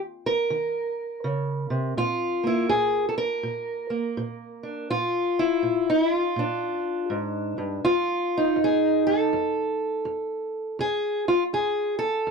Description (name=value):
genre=acoustic country blues, solo or duo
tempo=82 BPM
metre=4/4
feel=swing 62% on 8ths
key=Bb mixolydian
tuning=A4 = 440 Hz
part: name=fingerpicked steel-string acoustic guitar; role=solo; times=0.0-12.3 s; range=F2 to Bb4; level=-23 LUFS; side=equal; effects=none
room=light reverb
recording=dry, close 1970s-style studio recording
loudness=-23 LUFS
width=side -4 dB against mid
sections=0.0-12.3 A section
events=none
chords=0.0 Eb5; 2.0 Bb7; 7.8 F7